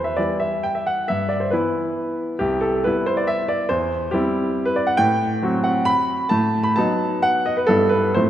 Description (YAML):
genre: classical, romantic triple-time dance for piano with dotted rhythms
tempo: 118-150 BPM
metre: 3/4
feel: rubato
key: E minor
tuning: A4 = 440 Hz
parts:
  - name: bright grand piano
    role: solo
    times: 0.0-8.3 s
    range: C2 to B5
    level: -18 LUFS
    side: equal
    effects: none
room: wet scoring stage reverb, RT60 2.1 s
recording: none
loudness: -18 LUFS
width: side -11 dB against mid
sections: 0.0-8.3 A section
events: none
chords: 0.0 Em; 1.1 Em/G; 2.4 Cmaj7; 3.7 C/E; 5.0 F#dim/A; 6.3 B7/A; 7.7 Em/G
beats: 0.17 0.64 | 1.08 1.51 1.96 | 2.39 2.84 3.29 | 3.70 4.13 4.56 | 4.99 5.42 5.87 | 6.31 6.77 7.24 | 7.68 8.16